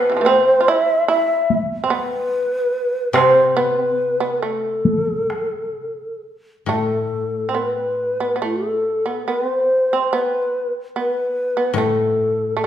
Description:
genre	japanese traditional, Japanese chamber music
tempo	63-75 BPM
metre	4/4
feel	rubato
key	A hirajoshi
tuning	A4 = 440 Hz
part	mellow long shakuhachi	melody	0.0-12.7 s	A4 to E5	-18 LUFS	left 1 dB	none
part	shamisen	second line	0.0-12.7 s	C3 to F4	-22 LUFS	right 5 dB	none
part	koto	accompaniment	0.0-12.7 s	A2 to C3	-26 LUFS	left 3 dB	none
part	taiko ensemble	percussion	0.3-5.5 s	none	-23 LUFS	left 1 dB	none
room	wet recital hall reverb, RT60 1.5 s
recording	recorded in a church or concert hall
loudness	-17 LUFS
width	side -10 dB against mid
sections	0.0-6.7 A section; 6.7-12.7 B section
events	none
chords	none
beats	0.67 1.49 2.31 | 3.14 3.98 4.84 5.76 | 6.68 7.56 8.42 9.26 | 10.12 10.96 11.77 12.58

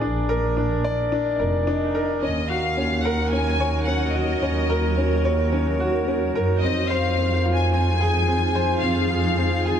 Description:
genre	piano and strings electronica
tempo	109 BPM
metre	4/4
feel	straight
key	Eb dorian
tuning	A4 = 440 Hz
part	clear concert grand piano	riff	0.0-9.8 s	C4 to D5	-24 LUFS	left 1 dB	shimmer reverb, digital delay
part	dark studio double bass section	bass	0.0-9.8 s	F1 to Gb2	-24 LUFS	right 1 dB	none
part	swell	sound effects	1.4-2.2 s	none	-32 LUFS	right 2 dB	none
part	dark studio violin section	melody	2.2-9.8 s	Eb5 to Ab5	-26 LUFS	left 2 dB	shimmer reverb
part	granular cloud pad	sustained chords	3.5-9.8 s	Eb4 to Db5	-28 LUFS	equal	built-in reverb, shimmer reverb
room	moderate concert hall reverb, RT60 2.4 s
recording	none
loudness	-19 LUFS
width	side -8 dB against mid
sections	0.0-9.8 A section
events	swell 1.4-2.2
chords	0.0 Bb7; 2.2 Ebm7; 6.6 Fm7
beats	| 0.02 0.57 1.12 1.67 | 2.22 2.77 3.33 3.88 | 4.43 4.98 5.53 6.08 | 6.63 7.18 7.73 8.28 | 8.83 9.38

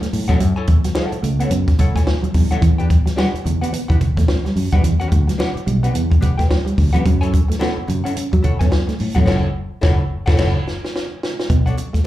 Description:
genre	funk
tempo	108 BPM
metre	4/4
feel	swing 60% on 16ths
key	unclear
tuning	A4 = 440 Hz
part	archtop guitar, miked and amplified	accompaniment	0.0-12.1 s	D4 to G#5	-26 LUFS	left 3 dB	wah, slapback echo
part	mellow electric guitar	riff	0.0-12.1 s	E3 to C#4	-25 LUFS	right 4 dB	slapback echo
part	compact cocktail drum kit	drums	0.0-12.0 s	crash cymbal, hi-hat, kick drum, snare drum	-18 LUFS	equal	none
part	fingered electric bass	bass	0.1-12.0 s	F#1 to F#3	-18 LUFS	equal	none
part	congas	percussion	0.1-12.1 s	none	-26 LUFS	right 1 dB	slapback echo
room	light reverb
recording	live gig heard through the venue's PA, club reverb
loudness	-15 LUFS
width	side -14 dB against mid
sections	0.0-11.5 A section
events	band accent 9.3-11.5; drum fill 10.4-11.5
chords	0.0 F#m7; 2.6 Em9; 7.1 F#m7; 11.5 Bm9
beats	| 0.40 0.96 1.51 2.07 | 2.62 3.17 3.73 4.28 | 4.84 5.39 5.95 6.50 | 7.05 7.61 8.16 8.72 | 9.27 9.83 10.38 10.94 | 11.49 12.04

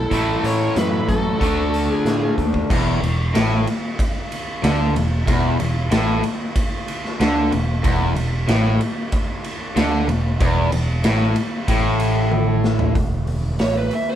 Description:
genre	blues rock power trio and southern rock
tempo	94 BPM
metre	4/4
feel	straight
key	unclear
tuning	A4 = 440 Hz
part	biting lead guitar	melody	0.0-2.3 s	A4 to C#5	-25 LUFS	equal	overdrive
part	lead guitar through a small cranked amp	second line	0.0-2.3, 13.6-14.2 s	E4 to E5	-27 LUFS	right 3 dB	overdrive
part	picked electric bass	bass	0.0-13.9 s	E1 to A2	-22 LUFS	equal	none
part	overdriven semi-hollow guitar	riff	0.1-13.0 s	E2 to D4	-20 LUFS	equal	none
part	raw garage drum kit	drums	0.1-14.1 s	crash cymbal, hi-hat, kick drum, ride cymbal, snare drum, toms	-22 LUFS	equal	none
room	moderate studio reverb, RT60 0.8 s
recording	band playing live in one room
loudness	-17 LUFS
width	side -11 dB against mid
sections	0.0-2.7 A section; 2.7-13.0 B section; 13.0-14.2 C section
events	drum fill 12.3-13.0; lead electric guitar solo 13.0-14.2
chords	0.1 A5; 1.4 D; 2.7 E7sus4; 13.0 N.C.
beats	| 0.12 0.76 1.41 2.05 | 2.70 3.34 3.99 4.63 | 5.27 5.92 6.56 7.20 | 7.84 8.48 9.12 9.76 | 10.40 11.04 11.68 12.32 | 12.96 13.60

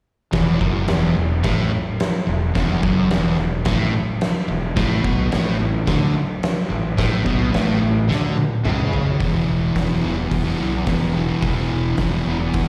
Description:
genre	garage rock duo or trio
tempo	108 BPM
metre	4/4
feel	straight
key	unclear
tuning	A4 = 440 Hz
part	fuzz guitar	riff	0.3-12.7 s	E2 to E3	-24 LUFS	equal	distortion, slapback echo
part	fuzz fingered electric bass	bass	0.3-12.7 s	E1 to D2	-25 LUFS	equal	overdrive
part	oversized low-tuned drum kit	drums	0.3-12.7 s	crash cymbal, hi-hat, kick drum, snare drum, toms	-24 LUFS	equal	none
room	studio ambience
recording	live gig heard through the venue's PA, recital hall reverb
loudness	-20 LUFS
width	mono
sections	0.3-9.2 A section; 9.2-12.7 B section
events	drum fill 8.1-9.2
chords	0.3 Esus24; 4.8 Aadd9; 9.2 E5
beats	| 0.33 0.89 1.44 1.99 | 2.55 3.10 3.66 4.21 | 4.76 5.32 5.87 6.43 | 6.98 7.54 8.09 8.65 | 9.21 9.76 10.32 10.88 | 11.43 11.99 12.55

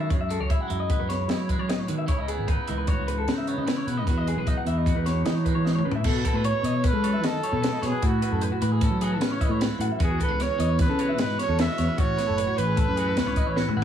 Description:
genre	math rock and midwest emo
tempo	152 BPM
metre	5/4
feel	straight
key	unclear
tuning	A4 = 440 Hz
part	twangy electric guitar	accompaniment	0.0-13.8 s	E2 to B4	-31 LUFS	right 6 dB	none
part	electric guitar through a small old amp	arpeggios	0.0-13.8 s	F#4 to F#5	-32 LUFS	left 6 dB	none
part	picked electric bass	bass	0.0-13.8 s	F#1 to G#3	-26 LUFS	equal	none
part	compact cocktail drum kit	drums	0.1-13.8 s	crash cymbal, hi-hat, kick drum, snare drum, toms	-26 LUFS	equal	none
part	warm trumpet	melody	6.5-13.8 s	F#4 to E5	-29 LUFS	right 3 dB	analog delay
room	little or no reverb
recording	heavily compressed radio sound, multiband compression, small room ambience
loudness	-22 LUFS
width	side -9 dB against mid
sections	0.0-6.0 A section; 6.0-13.8 B section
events	drum fill 5.7-6.0, 13.6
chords	0.0 F#m9; 2.1 C#m9; 4.1 Emaj9; 6.0 B9sus4; 10.0 E69; 12.0 A69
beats	| 0.10 0.50 0.90 1.29 1.69 | 2.09 2.48 2.88 3.28 3.67 | 4.07 4.47 4.86 5.26 5.65 | 6.05 6.45 6.84 7.24 7.63 | 8.03 8.42 8.82 9.21 9.61 | 10.00 10.40 10.79 11.19 11.59 | 11.98 12.38 12.77 13.17 13.57

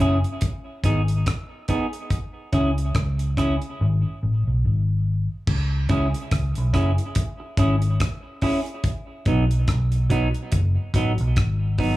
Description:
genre	roots reggae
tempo	71 BPM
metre	4/4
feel	swing 58% on 16ths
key	C# minor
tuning	A4 = 440 Hz
part	semi-hollow electric guitar	accompaniment	0.0-12.0 s	F#3 to G#4	-26 LUFS	right 1 dB	wide subtle chorus, tape echo
part	vintage muted fingered electric bass	bass	0.0-12.0 s	F#1 to C#2	-21 LUFS	equal	none
part	damped 70s drum kit	drums	0.0-12.0 s	crash cymbal, hi-hat, kick drum, rim click	-24 LUFS	equal	none
room	light reverb, small room ambience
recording	echo-heavy mix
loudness	-20 LUFS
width	side -17 dB against mid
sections	0.0-5.5 A section; 5.5-12.0 B section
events	drums muted 3.8-5.5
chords	0.4 G#m; 2.1 C#m; 3.8 N.C.; 5.5 C#m; 8.8 B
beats	0.42 1.26 | 2.11 2.95 3.79 4.63 | 5.48 6.32 7.16 8.00 | 8.84 9.68 10.52 11.36

